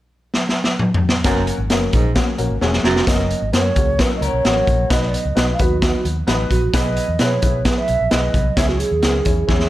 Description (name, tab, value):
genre	uptempo 1960s-style soul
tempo	131 BPM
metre	4/4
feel	straight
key	F# mixolydian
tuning	A4 = 440 Hz
part	raw garage drum kit	drums	0.3-9.7 s	hi-hat, kick drum, snare drum, toms	-18 LUFS	equal	none
part	warm upright piano	accompaniment	1.2-9.7 s	A#3 to C#5	-24 LUFS	left 3 dB	none
part	raspy baritone saxophone	riff	1.2-3.0 s	F#2 to G#2	-25 LUFS	right 3 dB	none
part	vintage muted fingered electric bass	bass	1.2-9.7 s	E1 to B2	-22 LUFS	equal	none
part	bass ocarina	melody	2.9-9.7 s	F#4 to E#5	-21 LUFS	right 3 dB	none
part	electric guitar through a small old amp	riff	4.0-4.9 s	A#3 to C#5	-27 LUFS	left 8 dB	spring reverb
room	light reverb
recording	faint mains hum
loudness	-15 LUFS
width	side -15 dB against mid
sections	0.0-1.2 A section; 1.2-3.1 B section; 3.1-9.7 C section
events	drum fill 0.3-1.2, 2.6-3.1, 9.5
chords	0.0 N.C.; 1.2 F#; 4.9 B; 6.7 E/B; 8.6 C#m